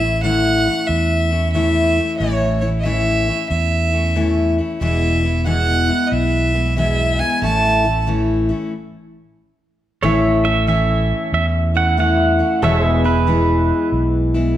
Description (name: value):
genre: honky-tonk and classic country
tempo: 92 BPM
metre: 4/4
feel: swing 64% on 8ths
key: A major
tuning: A4 = 439 Hz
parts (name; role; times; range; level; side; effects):
- rich fiddle; melody; 0.0-8.0 s; C#5 to A5; -20 LUFS; right 2 dB; none
- picked steel-string acoustic guitar; accompaniment; 0.0-14.6 s; E2 to E4; -19 LUFS; left 2 dB; none
- fingered electric bass; bass; 0.0-14.6 s; E1 to E2; -19 LUFS; right 1 dB; none
- pedal steel guitar; second line; 10.0-13.9 s; B4 to F#5; -20 LUFS; right 5 dB; none
- pedal steel guitar; sustained chords; 10.0-14.6 s; G#4 to E5; -26 LUFS; right 2 dB; none
room: moderate recital hall reverb, RT60 1.4 s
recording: none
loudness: -15 LUFS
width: side -12 dB against mid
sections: 0.0-10.0 A section; 10.0-14.6 B section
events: stop 8.7-10.0; pedal steel guitar solo 10.0-14.6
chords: 0.0 A; 4.8 E; 7.4 A; 12.6 E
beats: 0.24 0.90 1.55 | 2.20 2.86 3.51 4.16 | 4.82 5.47 6.12 6.77 | 7.42 8.07 8.73 9.38 | 10.03 10.68 11.33 11.98 | 12.63 13.28 13.93